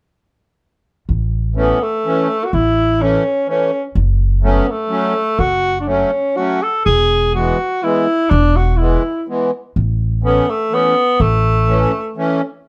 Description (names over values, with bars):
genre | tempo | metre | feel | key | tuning
alpine folk, alpine dance band | 124 BPM | 3/4 | swing 53% on 8ths | A major | A4 = 440 Hz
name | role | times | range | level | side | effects
upright bass | bass | 1.1-11.8 s | E1 to A1 | -18 LUFS | equal | none
accordion | accompaniment | 1.5-12.4 s | E3 to C#4 | -21 LUFS | equal | light tremolo tuning
warm tenor saxophone | melody | 1.6-12.2 s | A3 to A4 | -18 LUFS | equal | none
room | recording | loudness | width
moderate studio reverb, RT60 0.6 s | none | -16 LUFS | mono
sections
1.1-12.7 A section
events
none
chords
1.1 A; 4.0 F#m; 6.9 E; 9.8 Aadd9